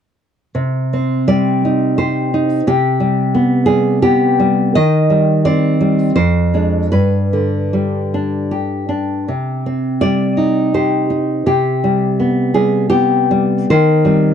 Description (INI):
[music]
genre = romantic piece for solo classical guitar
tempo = 71-93 BPM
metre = 3/4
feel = rubato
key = C minor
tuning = A4 = 440 Hz
[part]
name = nylon-string guitar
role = solo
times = 0.5-14.3 s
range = F2 to Eb5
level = -12 LUFS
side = equal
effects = none
[sound]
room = light reverb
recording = dry, close 1970s-style studio recording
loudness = -13 LUFS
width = side -8 dB against mid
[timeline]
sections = 0.5-14.3 A section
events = none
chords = 0.5 Cm; 2.6 G/C; 4.7 Cm/Eb; 6.2 Dm7b5/F; 6.9 G; 9.3 Cm; 11.5 G/C; 13.7 Cm/Eb